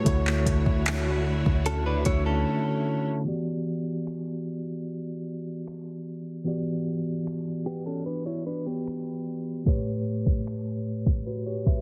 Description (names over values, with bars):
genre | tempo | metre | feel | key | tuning
contemporary R&B | 75 BPM | 4/4 | straight | E dorian | A4 = 441 Hz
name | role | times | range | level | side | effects
mellow tine electric piano | accompaniment | 0.0-11.8 s | A2 to E5 | -32 LUFS | equal | none
warm studio string section | sustained chords | 0.0-3.2 s | D3 to C#5 | -36 LUFS | equal | none
clean 808-style bass | bass | 0.0-2.4 s | D2 | -30 LUFS | equal | none
smooth R&B drum kit | drums | 0.1-11.8 s | finger snaps, handclaps, hi-hat, kick drum | -28 LUFS | equal | none
direct-recorded clean electric guitar | arpeggios | 1.7-9.6 s | B3 to C#5 | -34 LUFS | equal | tape echo
room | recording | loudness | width
light reverb, digital ambience | heavily compressed radio sound, low-pass filter | -28 LUFS | mono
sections
0.0-3.3 A section; 3.3-11.8 B section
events
drums muted 2.5-3.3; filter sweep 3.3-11.8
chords
0.1 Dmaj7; 3.3 Em7; 9.7 A9